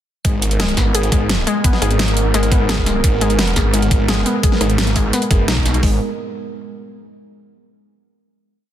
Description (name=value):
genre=dark technical drum and bass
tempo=172 BPM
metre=4/4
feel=straight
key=G# minor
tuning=A4 = 440 Hz
part: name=dark analog pad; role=sustained chords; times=0.4-6.0 s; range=G#3 to A#4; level=-24 LUFS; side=right 3 dB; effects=lush chorus, sidechain pumping
part: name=warbly dusty pluck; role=arpeggios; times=0.2-6.0 s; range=G#3 to G#4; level=-22 LUFS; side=left 4 dB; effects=chorus, sidechain pumping, digital delay
part: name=snarling distorted saw bass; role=bass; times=0.2-6.0 s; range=F#1 to B1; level=-18 LUFS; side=equal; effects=distortion, tube saturation, sidechain pumping
part: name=dubstep drum kit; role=drums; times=0.2-5.9 s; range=hi-hat, kick drum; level=-17 LUFS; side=equal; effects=none
part: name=dubstep drum kit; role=drums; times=0.2-5.8 s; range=hi-hat, snare drum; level=-21 LUFS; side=right 1 dB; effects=none
room=light reverb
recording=dense, heavily limited modern master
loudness=-14 LUFS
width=side -11 dB against mid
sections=0.2-5.8 drop; 5.8-7.2 final chord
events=drop 0.2-5.8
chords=0.2 G#madd9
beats=| 0.25 0.60 0.94 1.29 | 1.64 1.99 2.34 2.69 | 3.04 3.39 3.74 4.08 | 4.43 4.78 5.13 5.48 | 5.83